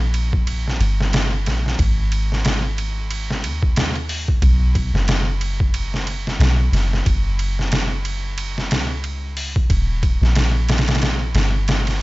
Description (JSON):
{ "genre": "trip hop", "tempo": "91 BPM", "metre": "4/4", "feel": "swing 58% on 16ths", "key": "unclear", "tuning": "A4 = 439 Hz", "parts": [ { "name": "soft 808-style bass", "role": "bass", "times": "0.0-12.0 s", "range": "D#1 to D#2", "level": "-20 LUFS", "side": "equal", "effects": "none" }, { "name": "trip hop sampler-style drum kit", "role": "drums", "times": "0.1-12.0 s", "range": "hi-hat, kick drum, ride cymbal, snare drum", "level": "-20 LUFS", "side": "equal", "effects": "small room ambience" } ], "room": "little or no reverb", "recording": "nothing above 7.8 kHz", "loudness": "-17 LUFS", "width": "side -20 dB against mid", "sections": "0.0-12.0 A section", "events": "none", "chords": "none", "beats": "0.47 1.13 | 1.79 2.45 3.10 3.77 | 4.42 5.08 5.74 6.40 | 7.06 7.72 8.38 9.04 | 9.70 10.36 11.02 11.68" }